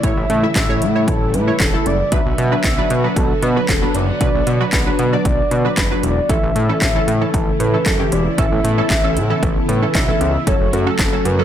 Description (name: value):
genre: dance-pop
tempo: 115 BPM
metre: 4/4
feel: straight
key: B minor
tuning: A4 = 439 Hz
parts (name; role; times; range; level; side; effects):
- mellow horn-like synth lead; melody; 0.0-11.4 s; A4 to E5; -22 LUFS; equal; chorus, digital delay
- funky polysynth comp; accompaniment; 0.0-11.4 s; E3 to E5; -22 LUFS; right 1 dB; chorus
- string machine, violas; sustained chords; 0.0-11.4 s; C#3 to F#4; -24 LUFS; equal; ensemble chorus, sidechain pumping
- wide unison pluck; arpeggios; 0.0-11.4 s; E3 to F#4; -31 LUFS; right 4 dB; none
- fat analog bass; bass; 0.0-11.4 s; E1 to B2; -19 LUFS; equal; sidechain pumping
- house drum kit; drums; 0.0-11.4 s; handclaps, hi-hat, kick drum, snare drum; -19 LUFS; equal; overdrive
room: digital ambience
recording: none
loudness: -14 LUFS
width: side -10 dB against mid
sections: 0.0-11.4 A section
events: none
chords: 0.0 A; 2.1 Bm; 6.3 A; 10.5 F#m